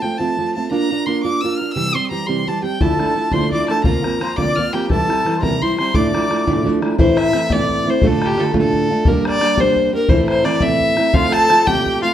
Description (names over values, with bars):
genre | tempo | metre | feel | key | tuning
celtic folk, Celtic jig | 115 BPM (dotted quarters) | 6/8 | straight | D minor | A4 = 440 Hz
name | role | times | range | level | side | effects
rich fiddle | melody | 0.0-12.1 s | G4 to F6 | -19 LUFS | left 1 dB | slapback echo
fingerpicked plugged-in steel-string acoustic guitar | accompaniment | 0.0-12.1 s | D2 to Bb4 | -18 LUFS | right 2 dB | none
warm viola | second line | 2.8-6.7, 11.1-12.1 s | F4 to D5 | -23 LUFS | left 4 dB | none
bodhran | percussion | 2.8-11.9 s | none | -20 LUFS | left 1 dB | none
room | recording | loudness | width
moderate studio ambience, RT60 0.5 s | none | -14 LUFS | side -10 dB against mid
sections
0.0-7.0 A section; 7.0-12.1 B section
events
none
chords
0.0 F; 0.7 Bb; 1.8 C; 2.8 Dmadd9; 3.9 Bbadd9/D; 4.9 C; 5.9 Dmadd9; 7.0 Am; 8.0 Dm/A; 9.1 Gm; 10.1 Am; 11.1 F